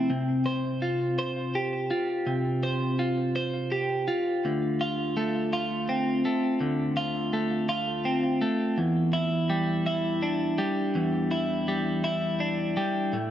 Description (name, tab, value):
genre	rock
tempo	55 BPM (dotted quarters)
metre	6/8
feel	straight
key	unclear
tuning	A4 = 440 Hz
part	twelve-string electric guitar	solo	0.0-13.3 s	D2 to C5	-25 LUFS	equal	analog delay
room	moderate lush hall reverb, RT60 2.6 s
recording	dark, warm production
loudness	-25 LUFS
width	side -11 dB against mid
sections	0.1-13.3 A section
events	none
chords	0.1 Csus4; 4.4 Dm7; 8.8 Em7